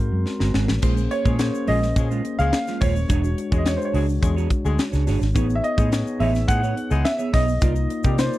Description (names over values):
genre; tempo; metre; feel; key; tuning
polished 1980s jazz-funk pop; 106 BPM; 4/4; straight; unclear; A4 = 441 Hz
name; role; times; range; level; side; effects
clear grand piano; melody; 0.0-8.4 s; C5 to Gb5; -26 LUFS; right 1 dB; slapback echo
bell-like tine electric piano; accompaniment; 0.0-8.4 s; Ab3 to Eb5; -28 LUFS; left 3 dB; wide subtle chorus
vintage muted fingered electric bass; bass; 0.0-8.3 s; Eb1 to C3; -22 LUFS; equal; none
mellow electric guitar; riff; 0.1-8.4 s; Ab3 to D5; -29 LUFS; right 7 dB; lush chorus
crisp fusion drum kit; drums; 0.3-8.3 s; crash cymbal, hi-hat, kick drum, snare drum; -23 LUFS; equal; none
tube shaker; percussion; 0.8-8.4 s; none; -45 LUFS; left 14 dB; none
mellow horn section; second line; 1.3-8.2 s; D3 to Ab4; -31 LUFS; left 5 dB; none
room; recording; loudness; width
little or no reverb; dry, close 1970s-style studio recording; -19 LUFS; side -16 dB against mid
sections
0.8-8.4 A section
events
drum fill 0.3-0.8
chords
0.0 Ab9; 0.8 Bbm9; 3.1 E13; 5.4 Amaj9#11; 7.6 Cm11